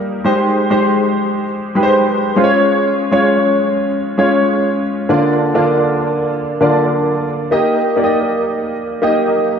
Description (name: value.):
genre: pop.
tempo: 99 BPM.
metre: 4/4.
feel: straight.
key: Eb major.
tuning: A4 = 439 Hz.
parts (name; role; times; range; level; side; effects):
warm grand piano; solo; 0.0-9.6 s; D3 to Eb5; -13 LUFS; equal; ensemble chorus, diffuse ambient delay.
room: wet plate reverb, RT60 2.6 s.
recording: dreamy mix soaked in reverb.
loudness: -13 LUFS.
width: side -7 dB against mid.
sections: 0.0-9.6 A section.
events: none.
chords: 0.2 Abmaj7; 2.4 Db; 5.1 Bb/D; 7.5 Eb.